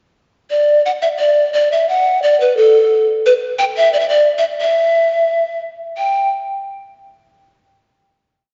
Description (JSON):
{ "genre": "andean folk, Andean ensemble", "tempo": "88 BPM", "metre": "2/4", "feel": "straight", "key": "E minor", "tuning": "A4 = 440 Hz", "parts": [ { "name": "breathy mellow pan flute", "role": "solo", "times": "0.5-6.3 s", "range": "A4 to G5", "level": "-15 LUFS", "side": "equal", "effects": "none" } ], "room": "wet concert hall reverb, RT60 2.0 s", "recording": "heard from further back in the room, nothing above 7.6 kHz", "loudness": "-15 LUFS", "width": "mono", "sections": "0.5-6.0 A section; 6.0-7.3 final note", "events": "none", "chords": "none" }